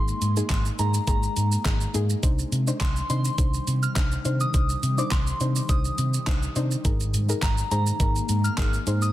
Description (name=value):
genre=dance-pop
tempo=104 BPM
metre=4/4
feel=straight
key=C minor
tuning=A4 = 440 Hz
part: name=soft synth bell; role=melody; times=0.0-9.1 s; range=Bb5 to F6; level=-31 LUFS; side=equal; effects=chorus, tape echo
part: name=soft round pluck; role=accompaniment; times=0.0-9.1 s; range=Bb3 to C5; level=-33 LUFS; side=left 3 dB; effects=chorus, sidechain pumping
part: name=ethereal airy pad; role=sustained chords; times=0.0-9.1 s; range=C3 to Bb3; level=-36 LUFS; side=left 1 dB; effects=ensemble chorus, built-in reverb, sidechain pumping
part: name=vintage muted fingered electric bass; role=bass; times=0.0-9.1 s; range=Ab1 to C3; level=-25 LUFS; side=equal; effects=sidechain pumping
part: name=pop drum kit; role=drums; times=0.1-9.1 s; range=handclaps, hi-hat, kick drum, shaker, snare drum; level=-26 LUFS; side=equal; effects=overdrive
room=little or no reverb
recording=dense, heavily limited modern master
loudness=-22 LUFS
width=side -14 dB against mid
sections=0.0-9.1 A section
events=none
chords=0.0 Absus2; 2.2 Cmadd9; 6.8 Absus2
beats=0.50 1.08 1.66 | 2.23 2.81 3.39 3.96 | 4.54 5.12 5.69 6.27 | 6.85 7.42 8.00 8.58